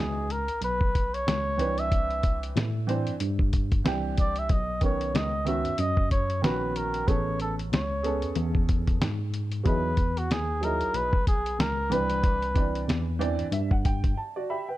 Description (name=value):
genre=hip hop, jazz-hop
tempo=93 BPM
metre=4/4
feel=swing 58% on 16ths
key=unclear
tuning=A4 = 440 Hz
part: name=trumpet with cup mute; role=melody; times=0.0-12.9 s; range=F#4 to E5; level=-30 LUFS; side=equal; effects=none
part: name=warm upright piano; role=accompaniment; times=0.0-14.8 s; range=D#3 to B5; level=-32 LUFS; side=right 4 dB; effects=none
part: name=tine electric piano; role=bass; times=0.0-14.1 s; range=A1 to A2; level=-30 LUFS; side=equal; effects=overdrive, fast stereo tremolo
part: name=lo-fi sampler-style drum kit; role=drums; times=0.3-14.2 s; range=hi-hat, kick drum, snare drum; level=-26 LUFS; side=equal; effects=none
room=small room ambience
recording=none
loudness=-24 LUFS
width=side -16 dB against mid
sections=0.0-14.8 A section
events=upright piano fill 12.9-14.8; break 14.2-14.8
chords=0.0 Emaj9; 1.6 Cmaj9; 4.5 Bmaj9; 7.1 Amaj9; 9.7 Emaj9; 11.9 Cmaj9